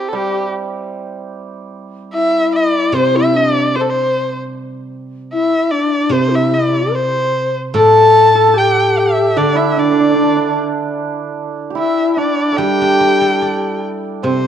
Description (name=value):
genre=chinese traditional, Chinese chamber ensemble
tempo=74 BPM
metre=2/4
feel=rubato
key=G zhi mode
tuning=A4 = 439 Hz
part: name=warm erhu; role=melody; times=0.0-14.5 s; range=G4 to A5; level=-16 LUFS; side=right 1 dB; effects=none
part: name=hammered dulcimer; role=second line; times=0.0-4.9, 7.7-14.5 s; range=G3 to A4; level=-19 LUFS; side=right 6 dB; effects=none
part: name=mellow xiao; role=second line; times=0.1-14.5 s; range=D4 to C5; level=-16 LUFS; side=left 4 dB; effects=none
part: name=steel-string zither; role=accompaniment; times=2.9-14.5 s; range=A2 to D5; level=-20 LUFS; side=right 1 dB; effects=none
room=moderate recital hall reverb, RT60 1.7 s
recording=dark, warm production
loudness=-12 LUFS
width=side -9 dB against mid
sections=0.0-1.3 A section; 1.3-14.2 B section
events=none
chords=none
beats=0.48 | 1.31 2.13 | 2.94 3.74 | 4.53 5.32 | 6.13 6.94 | 7.76 8.57 | 9.38 10.19 | 10.99 11.79 | 12.59 13.41 | 14.24